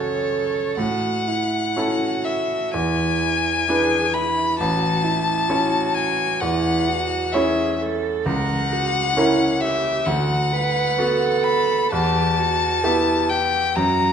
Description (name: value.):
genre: classical, slow romantic movement for piano trio.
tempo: 65 BPM.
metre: 4/4.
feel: rubato.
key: unclear.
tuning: A4 = 438 Hz.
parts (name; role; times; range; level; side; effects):
rich violin; melody; 0.0-14.1 s; C#5 to B5; -22 LUFS; left 4 dB; none.
dark cello; second line; 0.0-14.1 s; E4 to B4; -24 LUFS; right 7 dB; none.
bright grand piano; accompaniment; 0.0-14.1 s; A1 to E5; -23 LUFS; equal; none.
room: wet recital hall reverb, RT60 1.4 s.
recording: nothing above 10.4 kHz.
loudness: -18 LUFS.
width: side -7 dB against mid.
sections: 0.0-14.1 A section.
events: none.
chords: 0.0 F#m; 0.8 A; 2.7 E7; 4.6 A; 8.3 F#7/C#; 10.1 Bm/D; 11.9 Em.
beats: | 0.78 1.77 2.74 3.68 | 4.59 5.49 6.41 7.34 | 8.26 9.16 10.06 10.98 | 11.92 12.83 13.77.